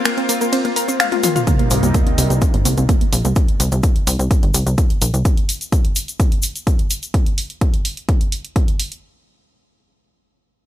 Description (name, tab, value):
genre	melodic techno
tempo	127 BPM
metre	4/4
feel	straight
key	C minor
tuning	A4 = 444 Hz
part	lush unison pad	sustained chords	0.0-3.3 s	C3 to F4	-24 LUFS	equal	chorus, sidechain pumping
part	egg shaker	percussion	0.0-7.1 s	none	-25 LUFS	left 4 dB	none
part	warbly dusty pluck	arpeggios	0.1-3.3 s	Bb3 to F6	-22 LUFS	left 1 dB	chorus, sidechain pumping, tape echo
part	techno drum kit	drums	0.1-9.0 s	finger snaps, hi-hat, ride cymbal, toms	-23 LUFS	right 1 dB	none
part	electronic kick drum	drums	1.5-8.7 s	none	-16 LUFS	equal	none
part	sub drop	sound effects	1.5-3.4 s	none	-25 LUFS	equal	none
part	plucky analog bass	bass	1.7-5.2 s	G1 to C2	-17 LUFS	equal	sidechain pumping
room	little or no reverb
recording	none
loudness	-15 LUFS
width	side -13 dB against mid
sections	0.0-1.5 A section; 1.5-9.0 B section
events	break 0.0-1.5; drop 0.0-1.5; drum fill 1.0-1.5; impact 1.5-3.4; filter sweep on synth arpeggio sound 1.5-3.4; filter sweep on analog synth pad 1.5-3.4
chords	0.0 Bbsus2; 1.5 Cm7